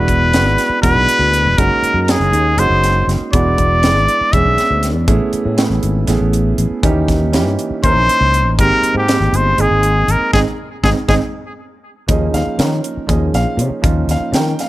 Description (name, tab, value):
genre	electric jazz fusion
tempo	240 BPM (eighths)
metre	7/8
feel	straight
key	unclear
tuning	A4 = 440 Hz
part	trumpet with straight mute	melody	0.0-4.9, 7.8-11.1 s	G4 to E5	-15 LUFS	left 1 dB	none
part	warm concert grand piano	accompaniment	0.0-14.7 s	Fb3 to G5	-19 LUFS	right 3 dB	none
part	sustaining fretless electric bass	bass	0.0-14.5 s	E1 to Eb3	-16 LUFS	left 1 dB	lush chorus
part	crisp fusion drum kit	drums	0.1-14.7 s	hi-hat, kick drum, snare drum	-19 LUFS	equal	none
room	light reverb, small room ambience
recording	none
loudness	-12 LUFS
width	side -16 dB against mid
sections	0.0-12.1 A section; 12.1-14.7 B section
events	band accent 10.3-12.1; drum fill 11.3-12.1; grand piano fill 11.3-12.1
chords	0.0 E9; 1.6 Gb69; 3.3 E13; 5.1 Amaj9; 6.8 Eb7b9; 8.6 Abmaj9; 12.1 Eb9sus4